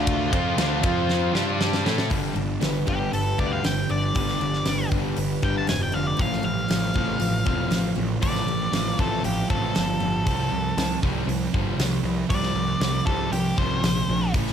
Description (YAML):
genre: quiet-loud alternative rock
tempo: 118 BPM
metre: 4/4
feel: straight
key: unclear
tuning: A4 = 440 Hz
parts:
  - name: octave-fuzz lead guitar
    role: melody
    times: 0.0-14.3 s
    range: F4 to A5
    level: -29 LUFS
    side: left 1 dB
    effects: distortion
  - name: soft string machine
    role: sustained chords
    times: 0.0-2.1 s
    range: F4 to G6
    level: -37 LUFS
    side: left 1 dB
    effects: none
  - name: high-gain distorted guitar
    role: riff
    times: 0.0-2.1 s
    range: D3 to A4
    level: -29 LUFS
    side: equal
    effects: distortion
  - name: raw garage guitar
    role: riff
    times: 0.0-14.5 s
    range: G2 to A4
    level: -31 LUFS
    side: left 12 dB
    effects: overdrive
  - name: thick fuzz guitar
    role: riff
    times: 0.0-14.5 s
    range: G2 to A4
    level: -28 LUFS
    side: right 9 dB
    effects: distortion
  - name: fuzz picked electric bass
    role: bass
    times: 0.0-14.5 s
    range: E1 to A2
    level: -28 LUFS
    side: equal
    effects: overdrive
  - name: big rock drum kit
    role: drums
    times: 0.1-14.5 s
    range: hi-hat, kick drum, ride cymbal, snare drum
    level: -27 LUFS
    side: equal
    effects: none
  - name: picked steel-string acoustic guitar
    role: arpeggios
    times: 2.1-10.3 s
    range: A2 to B4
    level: -33 LUFS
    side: left 11 dB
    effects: none
room: light reverb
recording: none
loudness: -21 LUFS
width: side -8 dB against mid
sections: 0.0-2.1 A section; 2.1-14.5 B section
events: drum fill 1.1-2.1; lead electric guitar solo 2.1-14.5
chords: 0.0 Dm; 0.8 F5; 1.3 G5; 1.9 Dm; 2.1 Gadd9; 6.2 Fadd9; 10.3 Csus4